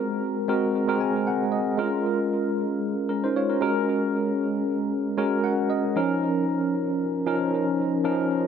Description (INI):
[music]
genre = pop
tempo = 115 BPM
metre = 4/4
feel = swing 54% on 16ths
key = Db major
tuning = A4 = 440 Hz
[part]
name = tine electric piano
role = solo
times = 0.0-8.5 s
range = F3 to Ab5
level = -22 LUFS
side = equal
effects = medium stereo tremolo, wide subtle chorus, digital delay
[sound]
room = moderate plate reverb, RT60 3.4 s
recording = none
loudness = -22 LUFS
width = side -8 dB against mid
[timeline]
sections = 0.0-1.8 A section; 1.8-8.5 B section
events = tine electric piano fill 0.7-1.8, 4.9-6.0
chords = 0.0 Ab9; 1.8 Bbm7; 3.6 Ab9sus4; 6.0 Db69